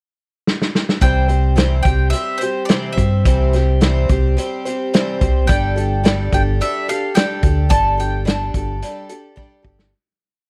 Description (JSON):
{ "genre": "folk rock and heartland rock", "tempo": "108 BPM", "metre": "4/4", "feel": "straight", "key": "C major", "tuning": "A4 = 440 Hz", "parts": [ { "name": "loose indie drum kit", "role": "drums", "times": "0.5-9.9 s", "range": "hi-hat, kick drum, snare drum", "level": "-20 LUFS", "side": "equal", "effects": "none" }, { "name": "bowl-back mandolin", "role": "melody", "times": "1.0-9.4 s", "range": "C5 to A5", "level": "-25 LUFS", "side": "equal", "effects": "none" }, { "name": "picked twelve-string acoustic guitar", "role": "accompaniment", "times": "1.0-9.9 s", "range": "C3 to C5", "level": "-25 LUFS", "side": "equal", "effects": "none" }, { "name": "fingered electric bass", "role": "bass", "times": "1.0-9.9 s", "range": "G1 to G2", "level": "-19 LUFS", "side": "equal", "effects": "none" } ], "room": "little or no reverb", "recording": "dry, close 1970s-style studio recording", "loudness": "-17 LUFS", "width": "mono", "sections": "0.0-1.0 pickup bar; 1.0-9.9 verse", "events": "drum fill 0.5-1.0, 9.4-9.9; fade-out 7.7-9.9", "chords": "0.0 N.C.; 1.0 C; 5.5 Gsus2" }